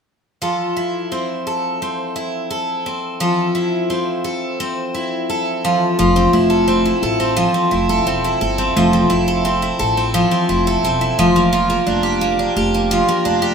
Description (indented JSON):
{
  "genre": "acoustic pop",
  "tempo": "86 BPM",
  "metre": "4/4",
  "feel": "straight",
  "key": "F major",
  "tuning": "A4 = 441 Hz",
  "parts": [
    { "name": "picked twelve-string acoustic guitar", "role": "accompaniment", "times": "0.4-13.5 s", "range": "F3 to A4", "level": "-16 LUFS", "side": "equal", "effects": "none" },
    { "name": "upright bass", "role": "bass", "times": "6.0-13.5 s", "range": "E1 to A1", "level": "-21 LUFS", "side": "right 1 dB", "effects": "none" }
  ],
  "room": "light reverb",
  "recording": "minimal, uncompressed stereo recording",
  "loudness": "-15 LUFS",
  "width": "side -6 dB against mid",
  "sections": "0.4-6.0 A section; 6.0-13.5 B section",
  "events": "none",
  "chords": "0.4 Fmaj7; 5.6 N.C.; 6.0 Fmaj7; 11.2 Bb6/F"
}